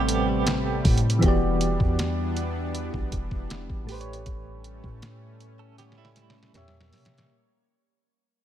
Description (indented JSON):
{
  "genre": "contemporary R&B",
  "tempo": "79 BPM",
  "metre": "4/4",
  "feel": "straight",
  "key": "unclear",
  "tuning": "A4 = 443 Hz",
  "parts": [
    { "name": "soft electric-piano-like synth keys", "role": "accompaniment", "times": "0.0-7.3 s", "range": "A2 to E5", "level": "-29 LUFS", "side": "left 1 dB", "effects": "chorus, tremolo" },
    { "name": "lush unison pad", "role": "sustained chords", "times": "0.0-7.3 s", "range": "C3 to C#5", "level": "-31 LUFS", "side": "right 1 dB", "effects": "chorus, sidechain pumping" },
    { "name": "direct-recorded clean electric guitar", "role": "arpeggios", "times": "0.0-1.0, 5.6-6.5 s", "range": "G3 to A4", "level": "-30 LUFS", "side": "right 10 dB", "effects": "tremolo, ping-pong delay" },
    { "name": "warm 808-style bass", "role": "bass", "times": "0.0-7.3 s", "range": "E1 to C3", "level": "-29 LUFS", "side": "equal", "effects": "none" },
    { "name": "detuned 8-bit digital drum machine", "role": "drums", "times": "0.1-7.4 s", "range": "hi-hat, kick drum, snare drum", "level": "-27 LUFS", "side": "equal", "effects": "none" }
  ],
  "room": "little or no reverb",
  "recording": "none",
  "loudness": "-22 LUFS",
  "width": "side -11 dB against mid",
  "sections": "0.0-7.3 A section",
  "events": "fade-out 0.0-7.3; drum fill 5.8-7.3",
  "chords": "0.0 Am7; 1.2 Em7; 3.9 A7; 6.5 A#dim7"
}